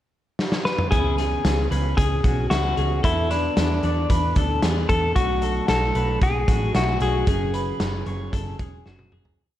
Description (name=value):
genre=jangly indie pop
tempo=113 BPM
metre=4/4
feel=straight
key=unclear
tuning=A4 = 440 Hz
part: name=raw garage drum kit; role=drums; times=0.4-9.4 s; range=hi-hat, kick drum, snare drum, toms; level=-24 LUFS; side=equal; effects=none
part: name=clean electric guitar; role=melody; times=0.7-8.8 s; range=D4 to B4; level=-25 LUFS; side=left 2 dB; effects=spring reverb, digital delay
part: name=mellow electric guitar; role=accompaniment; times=0.9-9.6 s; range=F#2 to A4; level=-31 LUFS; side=right 5 dB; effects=none
part: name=electric guitar through a small old amp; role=arpeggios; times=0.9-9.4 s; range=E4 to D5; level=-29 LUFS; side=left 3 dB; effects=phaser
part: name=vintage muted picked electric bass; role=bass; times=0.9-9.3 s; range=E1 to E2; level=-25 LUFS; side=equal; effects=none
room=light reverb, small room ambience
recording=dark, warm production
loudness=-19 LUFS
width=side -12 dB against mid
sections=0.0-0.9 pickup bar; 0.9-9.4 verse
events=drum fill 0.4-0.9, 8.9-9.4; fade-out 7.3-9.4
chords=0.0 N.C.; 0.9 C#m7; 3.0 E7sus4; 5.2 Bm7; 7.3 F#sus2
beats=0.39 | 0.92 1.45 1.98 2.51 | 3.04 3.57 4.10 4.63 | 5.16 5.69 6.22 6.75 | 7.28 7.80 8.33 8.86